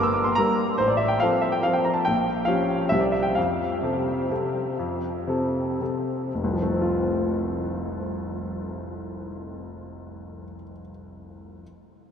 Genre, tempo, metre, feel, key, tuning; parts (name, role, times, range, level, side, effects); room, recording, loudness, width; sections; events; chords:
classical, piano waltz; 109-149 BPM; 3/4; rubato; F major; A4 = 439 Hz
clear baby grand piano; solo; 0.0-11.6 s; F1 to E6; -23 LUFS; equal
wet huge ambient reverb, RT60 8.2 s; in a vast, echoing space; -22 LUFS; side -7 dB against mid
0.0-6.3 A section; 6.3-9.5 B section
slowing down 2.7-6.3
0.0 Gm; 0.8 F/A; 2.1 Gm7b5/Bb; 2.9 C5; 3.4 F